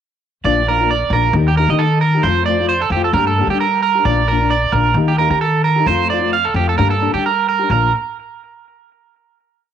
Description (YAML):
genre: highlife guitar band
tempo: 132 BPM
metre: 4/4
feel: swing 55% on 16ths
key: Bb major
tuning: A4 = 440 Hz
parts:
  - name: nylon-string guitar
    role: accompaniment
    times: 0.4-7.9 s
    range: Eb3 to G4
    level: -21 LUFS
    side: left 12 dB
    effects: none
  - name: upright bass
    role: bass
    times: 0.4-7.9 s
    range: Bb1 to G3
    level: -18 LUFS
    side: left 1 dB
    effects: none
  - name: electric guitar at the edge of break-up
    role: arpeggios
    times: 0.5-7.9 s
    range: G4 to F5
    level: -16 LUFS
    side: right 6 dB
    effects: analog delay
room: moderate studio reverb, RT60 0.6 s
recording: home recording on cassette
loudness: -13 LUFS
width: side -9 dB against mid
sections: 0.4-7.7 groove; 7.7-9.5 final chord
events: none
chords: 0.4 Bb; 1.3 Eb; 2.2 F; 3.1 Gm; 4.1 Bb; 5.0 Eb; 5.9 F; 6.8 Gm; 7.7 Bb5